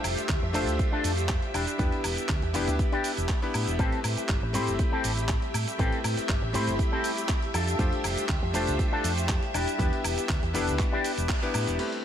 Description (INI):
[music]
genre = nu-disco, nu disco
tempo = 120 BPM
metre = 4/4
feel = straight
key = unclear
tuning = A4 = 441 Hz
[part]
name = bright electric grand piano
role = accompaniment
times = 0.0-12.0 s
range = A3 to B5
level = -33 LUFS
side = left 2 dB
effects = sidechain pumping, low-pass filter, dub echo
[part]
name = string machine, full ensemble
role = sustained chords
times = 0.0-12.0 s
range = D4 to E5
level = -34 LUFS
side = equal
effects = ensemble chorus, sidechain pumping
[part]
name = electric guitar with an envelope filter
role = riff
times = 0.0-11.5 s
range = C4 to C5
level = -33 LUFS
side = left 3 dB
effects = analog chorus, dub echo
[part]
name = hollow-body short-scale fingered electric bass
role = bass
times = 0.0-11.8 s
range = E1 to A2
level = -30 LUFS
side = equal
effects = none
[part]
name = dusty soul sampler-style drum kit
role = drums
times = 0.0-12.0 s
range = crash cymbal, handclaps, hi-hat, shaker, woodblock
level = -34 LUFS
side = right 1 dB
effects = none
[part]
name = electronic kick drum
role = drums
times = 0.3-11.4 s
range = none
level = -28 LUFS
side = equal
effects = none
[sound]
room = little or no reverb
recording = none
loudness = -25 LUFS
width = side -9 dB against mid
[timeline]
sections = 0.0-11.8 A section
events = band accent 11.3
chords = 0.0 F6; 1.5 Em7; 3.8 Am7; 7.5 F6; 9.5 Em7